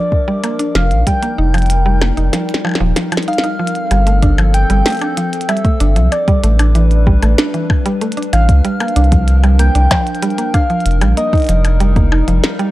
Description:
IDM; 95 BPM; 4/4; straight; G minor; A4 = 441 Hz
soft struck synth lead; melody; 0.0-12.4 s; D5 to G5; -20 LUFS; equal; chorus, tape echo
warbly tape-like pad; sustained chords; 0.0-12.7 s; F3 to B4; -23 LUFS; left 2 dB; chorus, built-in reverb
mallet-like synth pluck; arpeggios; 0.0-12.7 s; E3 to Eb4; -20 LUFS; right 2 dB; chorus, analog delay
electronic kick drum; drums; 0.1-12.1 s; -14 LUFS; equal; small room ambience
glitchy drum kit; drums; 0.4-12.7 s; hi-hat, percussion blips, snare drum; -20 LUFS; equal; small room ambience
warm sub bass; bass; 0.8-12.4 s; Eb1 to D2; -12 LUFS; equal; tube saturation
digital ambience; dry, gritty hardware recording; -11 LUFS; side -16 dB against mid
0.0-3.6 A section; 3.6-12.7 B section
break 2.3-3.6; drum fill 2.3-3.6
0.0 C9sus4 (rootless); 0.8 F9sus4; 3.6 G9sus4; 6.1 A9sus4; 8.6 C9sus4; 10.9 F9sus4

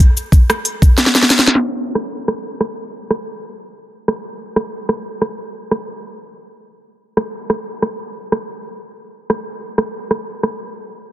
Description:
dancehall; 92 BPM; 4/4; straight
island pop drum kit; drums; 0.0-10.6 s; hi-hat, kick drum, rim click, shaker, snare drum; -15 LUFS; equal
light reverb; dense, heavily limited modern master, low-pass filter; -15 LUFS; side -14 dB against mid
0.0-1.6 A section; 1.6-11.1 B section
drum fill 1.0-1.6; filter sweep 1.6-11.1; break 10.8-11.1

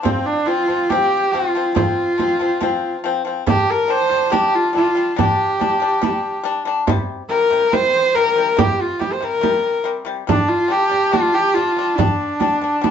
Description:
mongolian traditional, Mongolian folk; 70 BPM; 4/4; straight; G yu mode; A4 = 440 Hz
bright horsehead fiddle; melody; 0.0-12.9 s; C4 to C5; -17 LUFS; right 1 dB
pipa; arpeggios; 0.0-12.9 s; C3 to D4; -22 LUFS; left 5 dB
frame drum; percussion; 0.1-12.9 s; -20 LUFS; right 3 dB
wet studio reverb, RT60 0.6 s; band playing live in one room, nothing above 7.8 kHz; -15 LUFS; side -8 dB against mid
0.0-12.9 A section
0.1 F5; 3.5 G5; 6.9 C5; 10.3 G5

